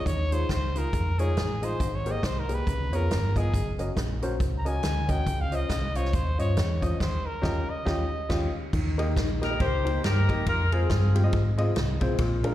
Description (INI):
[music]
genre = uptempo gospel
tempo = 138 BPM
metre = 4/4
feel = swing 59% on 8ths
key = unclear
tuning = A4 = 438 Hz
[part]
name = clear trumpet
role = melody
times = 0.0-8.6 s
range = Ab4 to Bb5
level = -33 LUFS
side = equal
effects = slapback echo
[part]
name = dark upright piano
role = accompaniment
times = 0.1-12.5 s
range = Ab2 to F5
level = -32 LUFS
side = left 2 dB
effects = slapback echo
[part]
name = fingered electric bass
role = bass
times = 0.1-12.5 s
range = Gb1 to Ab2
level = -27 LUFS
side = equal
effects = none
[part]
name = swinging big-band drum kit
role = drums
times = 0.1-12.5 s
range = crash cymbal, hi-hat, kick drum, ride cymbal, snare drum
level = -30 LUFS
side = equal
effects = none
[part]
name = mellow horn section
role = melody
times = 9.4-11.5 s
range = C4 to C5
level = -29 LUFS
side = left 2 dB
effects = slapback echo
[sound]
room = small room ambience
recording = live gig heard through the venue's PA, recital hall reverb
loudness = -24 LUFS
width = side -13 dB against mid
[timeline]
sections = 0.0-8.7 A section; 8.7-12.5 B section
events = band accent 7.0-8.7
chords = 0.1 Eb9sus4; 1.8 Abmaj9; 2.7 Db7; 3.5 Gb6; 5.3 Dbmaj9; 7.0 Eb9; 8.7 Eb; 10.5 Fm